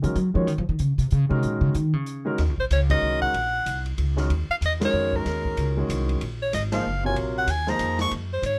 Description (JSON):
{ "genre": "modal jazz", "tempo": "188 BPM", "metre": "3/4", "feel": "swing 61% on 8ths", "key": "Eb dorian", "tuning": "A4 = 439 Hz", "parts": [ { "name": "warm concert grand piano", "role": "accompaniment", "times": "0.0-8.1 s", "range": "C3 to Db5", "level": "-31 LUFS", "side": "equal", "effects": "none" }, { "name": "upright bass", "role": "bass", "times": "0.0-8.6 s", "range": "Gb1 to Gb3", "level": "-27 LUFS", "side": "equal", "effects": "none" }, { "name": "open jazz drum kit", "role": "drums", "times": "0.0-8.5 s", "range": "hi-hat, kick drum, ride cymbal, snare drum", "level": "-37 LUFS", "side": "equal", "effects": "none" }, { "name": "breathy soprano saxophone", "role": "melody", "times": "2.6-8.6 s", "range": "Bb4 to Db6", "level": "-27 LUFS", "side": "equal", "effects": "none" } ], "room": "little or no reverb", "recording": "close, detailed microphones", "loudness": "-24 LUFS", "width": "mono", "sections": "0.0-2.4 A section; 2.4-8.6 B section", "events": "upright bass solo 0.0-2.4; band accent 2.9, 4.8, 6.7", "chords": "0.0 Ebm11", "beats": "0.16 | 0.48 0.80 1.11 | 1.43 1.75 2.07 | 2.39 2.71 3.03 | 3.34 3.66 3.98 | 4.30 4.62 4.94 | 5.26 5.58 5.89 | 6.21 6.53 6.85 | 7.17 7.49 7.81 | 8.12 8.44" }